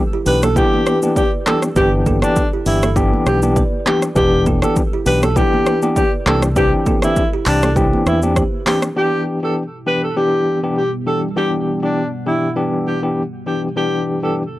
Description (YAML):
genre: afrobeats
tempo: 100 BPM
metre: 4/4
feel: swing 55% on 16ths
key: G major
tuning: A4 = 441 Hz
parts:
  - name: kalimba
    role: riff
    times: 0.1-8.6 s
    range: E4 to D5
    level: -25 LUFS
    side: right 6 dB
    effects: analog delay
  - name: breathy alto saxophone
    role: melody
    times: 0.3-14.3 s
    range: D4 to B4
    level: -20 LUFS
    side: equal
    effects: analog delay
  - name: bright tine electric piano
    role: accompaniment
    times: 0.3-14.4 s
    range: E3 to G4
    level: -19 LUFS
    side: left 2 dB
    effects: fast tremolo
  - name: fingered electric bass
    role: bass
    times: 0.3-8.4 s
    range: E1 to E2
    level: -18 LUFS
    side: equal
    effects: tube saturation
  - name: deep house drum kit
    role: drums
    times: 0.3-9.0 s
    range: handclaps, hi-hat, kick drum, rim click, shaker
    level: -19 LUFS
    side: equal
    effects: overdrive
  - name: congas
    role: percussion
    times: 0.4-8.8 s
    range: none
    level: -26 LUFS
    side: right 3 dB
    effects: none
  - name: deep dark ambient pad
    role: sustained chords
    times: 9.7-14.6 s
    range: B2 to F#5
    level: -28 LUFS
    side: right 2 dB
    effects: chorus, built-in reverb
room: little or no reverb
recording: dry, gritty hardware recording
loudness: -14 LUFS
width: side -16 dB against mid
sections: 0.0-9.0 A section; 9.0-14.6 B section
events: none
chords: 0.0 G6; 4.2 Em7; 6.3 Cadd9; 9.0 G6; 13.8 Em7